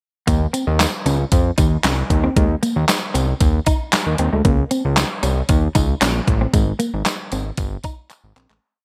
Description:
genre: early-eighties boogie funk.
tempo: 115 BPM.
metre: 4/4.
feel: straight.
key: Ab major.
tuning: A4 = 441 Hz.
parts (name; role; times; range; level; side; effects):
clean electric guitar; riff; 0.3-8.6 s; Ab3 to Eb4; -26 LUFS; equal; analog chorus.
fat analog bass; bass; 0.3-8.6 s; G1 to F2; -21 LUFS; equal; none.
detuned 8-bit digital drum machine; drums; 0.3-8.6 s; handclaps, hi-hat, kick drum, snare drum; -21 LUFS; equal; gated reverb.
tambourine; percussion; 0.3-8.2 s; none; -34 LUFS; equal; none.
room: light reverb.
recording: bright 1980s-style digital production.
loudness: -18 LUFS.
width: mono.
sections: 0.3-8.6 breakdown.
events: fade-out 6.5-8.6; drum fill 8.1-8.6.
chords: 0.3 Ebsus2; 2.1 Ab (rootless); 4.5 A; 6.5 Abmaj7.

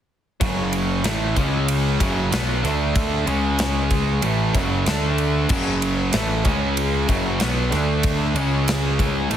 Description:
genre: hard rock.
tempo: 94 BPM.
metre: 4/4.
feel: straight.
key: F# minor.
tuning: A4 = 439 Hz.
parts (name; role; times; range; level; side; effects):
distorted electric guitar; riff; 0.4-9.4 s; F#2 to D4; -25 LUFS; right 8 dB; overdrive.
overdriven semi-hollow guitar; riff; 0.4-9.4 s; F#2 to D4; -27 LUFS; left 8 dB; none.
sludgy distorted guitar; riff; 0.4-9.4 s; F#2 to D4; -25 LUFS; equal; overdrive.
fuzz picked electric bass; bass; 0.4-9.4 s; F#1 to D2; -24 LUFS; equal; overdrive.
gated 80s drum kit; drums; 0.4-9.4 s; crash cymbal, kick drum, ride cymbal, snare drum; -25 LUFS; equal; none.
room: little or no reverb.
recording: heavily compressed radio sound, multiband compression.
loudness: -18 LUFS.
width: side -10 dB against mid.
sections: 0.4-9.4 A section.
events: none.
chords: 0.4 F#m; 1.4 C#5; 2.0 F#5; 2.6 D5; 3.3 C#5; 4.2 F#m; 4.9 D5; 5.5 F#m; 6.5 C#5; 7.1 F#5; 7.7 D5; 8.4 C#5.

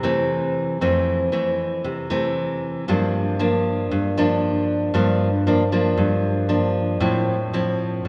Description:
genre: bossa nova.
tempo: 116 BPM.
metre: 4/4.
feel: straight.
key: F major.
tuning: A4 = 443 Hz.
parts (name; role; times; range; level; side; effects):
nylon-string guitar; solo; 0.0-8.1 s; F2 to E4; -21 LUFS; equal; none.
room: wet church reverb, RT60 3.7 s.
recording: recorded in a church or concert hall, nothing above 10.7 kHz.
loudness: -21 LUFS.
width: mono.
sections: 0.0-8.1 A section.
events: none.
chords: 0.0 Fmaj7; 2.9 Gm7; 7.0 Fmaj7/A.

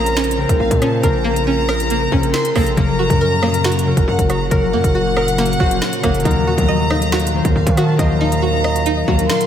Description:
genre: hip hop, drill.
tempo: 138 BPM.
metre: 4/4.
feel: half-time.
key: unclear.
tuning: A4 = 436 Hz.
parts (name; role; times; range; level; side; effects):
warm studio violin section; second line; 0.0-9.5 s; F5 to C6; -23 LUFS; left 1 dB; analog delay.
concert harp; accompaniment; 0.0-9.5 s; Db3 to C5; -19 LUFS; left 3 dB; none.
warbly tape-like pad; sustained chords; 0.0-9.5 s; Bb2 to F5; -23 LUFS; right 1 dB; chorus, built-in reverb.
string-like resonator pluck; arpeggios; 0.0-9.5 s; Bb3 to Eb5; -22 LUFS; right 2 dB; chorus, analog delay.
distorted 808-style bass; bass; 0.0-9.3 s; Gb1 to Eb3; -21 LUFS; right 1 dB; distortion.
drill drum kit; drums; 0.1-9.5 s; hi-hat, kick drum, rim click, snare drum; -20 LUFS; right 1 dB; none.
room: moderate plate reverb, RT60 2.5 s.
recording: dreamy mix soaked in reverb.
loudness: -14 LUFS.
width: side -9 dB against mid.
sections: 0.0-9.5 A section.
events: none.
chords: 0.0 Bbmadd9; 2.8 Gb; 6.3 Ebmadd9.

